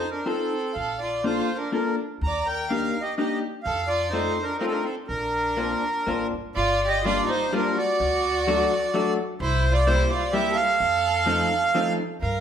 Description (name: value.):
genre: musette waltz.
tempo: 125 BPM.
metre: 3/4.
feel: rubato.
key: Bb major, G minor from 6.6 s.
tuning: A4 = 438 Hz.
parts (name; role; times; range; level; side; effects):
accordion; melody; 0.0-12.4 s; A4 to Bb5; -25 LUFS; right 1 dB; none.
rich violin; second line; 0.0-12.4 s; C4 to D5; -29 LUFS; right 3 dB; none.
vintage hollow-body jazz guitar; accompaniment; 0.0-12.0 s; F3 to A4; -27 LUFS; left 3 dB; none.
upright bass; bass; 0.8-12.4 s; G1 to G2; -29 LUFS; equal; none.
room: wet large studio reverb, RT60 1.2 s.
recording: band playing live in one room.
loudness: -22 LUFS.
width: side -8 dB against mid.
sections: 0.0-6.6 A section; 6.6-12.4 B section.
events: none.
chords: 0.0 F7; 0.8 Bbmaj7; 2.2 Ebmaj7; 3.7 F7; 5.1 Bbadd9; 6.6 Gm7; 8.0 D; 9.4 C7; 10.8 F7.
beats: 0.27 | 0.76 1.25 1.73 | 2.22 2.70 3.18 | 3.65 4.13 4.61 | 5.09 5.58 6.07 | 6.56 7.05 7.53 | 8.00 8.47 8.94 | 9.41 9.88 10.34 | 10.80 11.27 11.74 | 12.22.